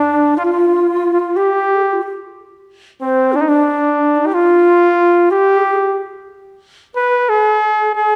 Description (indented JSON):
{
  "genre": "persian",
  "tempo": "61 BPM (dotted quarters)",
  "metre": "6/8",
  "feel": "straight",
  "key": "G dastgah homayun",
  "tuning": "A4 = 439 Hz",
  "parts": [
    { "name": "warm flugelhorn", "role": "melody", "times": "0.0-8.2 s", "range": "C4 to B4", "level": "-16 LUFS", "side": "equal", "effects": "none" },
    { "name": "breathy bright low ney", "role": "second line", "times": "0.0-8.2 s", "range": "D4 to C5", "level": "-18 LUFS", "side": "equal", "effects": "none" }
  ],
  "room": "moderate scoring stage reverb, RT60 1.5 s",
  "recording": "dark, warm production",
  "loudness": "-14 LUFS",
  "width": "mono",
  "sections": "0.0-8.2 A section",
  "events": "none",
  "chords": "none"
}